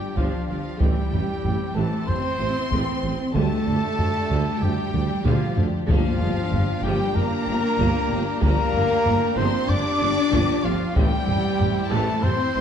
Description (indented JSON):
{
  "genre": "cinematic, epic orchestral film score",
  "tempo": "94 BPM",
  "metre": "4/4",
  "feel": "straight",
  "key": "G dorian",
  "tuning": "A4 = 439 Hz",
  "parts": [
    { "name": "warm symphonic violin section", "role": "melody", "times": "0.0-12.6 s", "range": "F5 to D6", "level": "-33 LUFS", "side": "left 4 dB", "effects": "none" },
    { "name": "mellow hollow concert flute", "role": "second line", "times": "0.0-12.6 s", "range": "F5 to D6", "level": "-33 LUFS", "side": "left 2 dB", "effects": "none" },
    { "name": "warm symphonic violin section", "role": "second line", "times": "0.0-12.6 s", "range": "C4 to G4", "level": "-34 LUFS", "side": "left 5 dB", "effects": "none" },
    { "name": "mellow French horn section", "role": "sustained chords", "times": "0.0-12.6 s", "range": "F3 to D4", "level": "-28 LUFS", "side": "left 4 dB", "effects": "none" },
    { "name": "clear trumpet", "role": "stabs", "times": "0.0-12.6 s", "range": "F4 to D5", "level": "-31 LUFS", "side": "right 2 dB", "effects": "none" },
    { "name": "warm symphonic cello section", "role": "bass", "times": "0.0-12.6 s", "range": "F3 to D4", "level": "-29 LUFS", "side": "right 3 dB", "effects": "none" },
    { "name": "warm studio viola section", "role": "accompaniment", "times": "0.2-12.6 s", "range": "D3 to D4", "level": "-31 LUFS", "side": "equal", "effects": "none" },
    { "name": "warm symphonic double bass section", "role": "bass", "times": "0.2-12.6 s", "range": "G1 to D2", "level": "-30 LUFS", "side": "right 3 dB", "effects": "none" },
    { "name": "warm tuba", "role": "bass", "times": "0.2-12.6 s", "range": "G1 to D2", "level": "-29 LUFS", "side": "right 3 dB", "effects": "none" },
    { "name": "taiko ensemble", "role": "drums", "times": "0.2-12.5 s", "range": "none", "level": "-25 LUFS", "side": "equal", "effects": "none" },
    { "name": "timpani", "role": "percussion", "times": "3.3-6.8 s", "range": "G2 to D3", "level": "-30 LUFS", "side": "left 1 dB", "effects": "none" }
  ],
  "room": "wet scoring stage reverb, RT60 1.8 s",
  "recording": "dark, warm production",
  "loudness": "-20 LUFS",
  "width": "side -8 dB against mid",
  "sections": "0.0-12.6 A section",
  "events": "drum fill 4.9-5.9",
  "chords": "0.0 G7(no3); 0.8 Am; 3.4 Dsus4; 5.9 Gm7; 11.0 Am",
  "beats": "0.17 | 0.81 1.44 2.08 2.71 | 3.35 3.98 4.62 5.25 | 5.89 6.53 7.16 7.79 | 8.43 9.06 9.70 10.33 | 10.97 11.60 12.23"
}